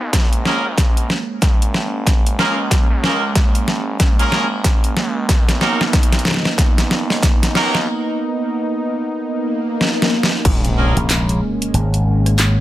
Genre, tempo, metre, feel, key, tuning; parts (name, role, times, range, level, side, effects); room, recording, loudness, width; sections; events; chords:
glitch hop; 93 BPM; 4/4; swing 61% on 16ths; Bb phrygian; A4 = 440 Hz
warm analog pad; sustained chords; 0.0-12.6 s; Ab3 to D#4; -22 LUFS; right 1 dB; chorus, sidechain pumping
gritty driven synth bass; bass; 0.0-10.9 s; F#1 to D#2; -25 LUFS; equal; tube saturation, high-pass filter
dubstep drum kit; drums; 0.1-12.5 s; crash cymbal, handclaps, hi-hat, rim click, snare drum; -19 LUFS; equal; overdrive
electronic kick drum; drums; 0.1-10.6 s; -15 LUFS; equal; overdrive
brilliant horn section; stabs; 0.5-11.0 s; Bb3 to Bb4; -22 LUFS; right 1 dB; sidechain pumping, dub echo
swell and impact; sound effects; 9.4-12.6 s; -25 LUFS; left 2 dB
slap bass with an envelope filter; bass; 11.0-12.6 s; Ab1 to Bb1; -15 LUFS; equal
digital ambience; -14 LUFS; side -14 dB against mid
0.0-10.5 A section; 10.5-12.6 B section
build-up 0.0-10.5; drum fill 0.0-7.9, 9.8-10.5; filter sweep on analog synth pad 0.0-10.5; break 7.9-10.5; swell 9.4-10.5; drop 10.5-12.6; impact 10.5-12.6
0.1 Bbm7; 5.3 Bmaj7; 10.5 Bbm7